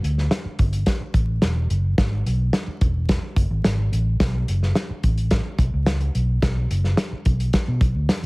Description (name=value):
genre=uptempo 1960s-style soul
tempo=108 BPM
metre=4/4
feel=straight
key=B minor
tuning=A4 = 440 Hz
part: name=vintage muted fingered electric bass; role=bass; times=0.0-8.3 s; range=E1 to B2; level=-21 LUFS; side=equal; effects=none
part: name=warm soul drum kit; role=drums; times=0.0-8.3 s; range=hi-hat, kick drum, snare drum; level=-22 LUFS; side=equal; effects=none
room=little or no reverb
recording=heavily compressed radio sound, multiband compression, vinyl crackle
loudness=-19 LUFS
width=side -27 dB against mid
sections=0.0-8.3 A section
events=none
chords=none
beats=0.31 0.87 1.42 | 1.98 2.54 3.09 3.65 | 4.20 4.76 5.31 5.87 | 6.42 6.98 7.54 8.09